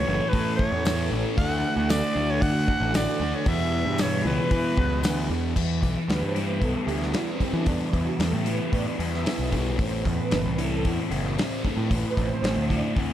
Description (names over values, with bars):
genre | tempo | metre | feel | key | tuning
psychedelic rock | 114 BPM | 4/4 | straight | E dorian, E minor from 5.6 s | A4 = 445 Hz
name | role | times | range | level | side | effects
raspy soprano saxophone | melody | 0.0-5.3 s | B4 to F#5 | -28 LUFS | equal | analog delay
string machine, cellos | sustained chords | 0.0-12.8 s | E3 to E5 | -34 LUFS | right 4 dB | ensemble chorus
thick fuzz guitar | riff | 0.0-13.1 s | E2 to E4 | -28 LUFS | equal | distortion, phaser, analog delay
fuzz picked electric bass | bass | 0.0-13.1 s | F#1 to E3 | -28 LUFS | equal | overdrive
damped 70s drum kit | drums | 0.3-13.1 s | crash cymbal, hi-hat, kick drum, snare drum | -28 LUFS | equal | analog delay
tambourine | percussion | 0.9-5.2 s | none | -42 LUFS | left 7 dB | none
room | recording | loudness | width
light reverb | echo-heavy mix | -22 LUFS | side -11 dB against mid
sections
0.0-5.6 A section; 5.6-13.1 B section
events
string machine solo 5.6-13.1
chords
0.0 Aadd9; 1.4 Dadd9; 3.5 Em; 9.8 Am